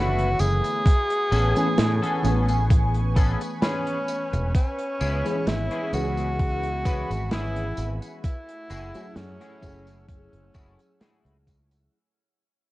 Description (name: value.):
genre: vaporwave.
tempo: 65 BPM.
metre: 4/4.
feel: swing 53% on 16ths.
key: unclear.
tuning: A4 = 440 Hz.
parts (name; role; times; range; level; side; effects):
clear tenor saxophone; melody; 0.0-11.4 s; C#4 to G#4; -28 LUFS; equal; tape echo.
mellow FM electric piano; accompaniment; 0.0-12.0 s; D3 to G#5; -30 LUFS; left 1 dB; ensemble chorus.
lush unison pad; sustained chords; 0.0-11.9 s; A3 to E6; -39 LUFS; equal; chorus, phaser.
clean electric guitar; riff; 0.0-11.8 s; A3 to B4; -34 LUFS; left 2 dB; analog chorus, tape echo.
fretless electric bass; bass; 0.0-11.9 s; E1 to A2; -25 LUFS; equal; none.
modern studio drum kit; drums; 0.2-11.9 s; hi-hat, snare drum, tambourine; -30 LUFS; right 1 dB; vintage 12-bit sampler grit.
electronic kick drum; drums; 0.9-11.7 s; none; -20 LUFS; equal; vintage 12-bit sampler grit.
room: light reverb, studio ambience.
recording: cassette tape.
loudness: -21 LUFS.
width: side -18 dB against mid.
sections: 0.0-11.9 A section.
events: fade-out 2.1-11.9.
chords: 0.0 Bm11; 0.9 Amaj9; 4.5 C#m7; 8.2 F#m9.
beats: | 0.86 1.78 2.70 3.62 | 4.55 5.47 6.39 7.32 | 8.24 9.16 10.09 11.01.